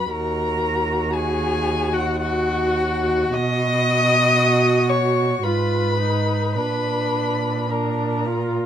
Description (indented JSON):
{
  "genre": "classical, slow romantic movement for string quartet",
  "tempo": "52-58 BPM",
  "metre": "3/4",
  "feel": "rubato",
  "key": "unclear",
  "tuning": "A4 = 441 Hz",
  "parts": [
    { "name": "muted violin", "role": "melody", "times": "0.0-8.7 s", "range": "F#5 to D#6", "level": "-24 LUFS", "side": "left 4 dB", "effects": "none" },
    { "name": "muted violin", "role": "second line", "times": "0.0-8.7 s", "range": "F#4 to D#5", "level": "-24 LUFS", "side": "left 2 dB", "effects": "none" },
    { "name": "muted viola", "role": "accompaniment", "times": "0.0-8.7 s", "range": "D4 to F#4", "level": "-25 LUFS", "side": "right 2 dB", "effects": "none" },
    { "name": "muted cello", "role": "bass", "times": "0.0-8.7 s", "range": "D#2 to B2", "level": "-23 LUFS", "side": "right 3 dB", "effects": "none" }
  ],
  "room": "light reverb",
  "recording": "close, detailed microphones",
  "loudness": "-18 LUFS",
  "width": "side -9 dB against mid",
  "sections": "0.0-8.7 A section",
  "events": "none",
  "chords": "0.1 D#m; 3.3 B; 5.4 Fdim/Ab; 6.6 Bb"
}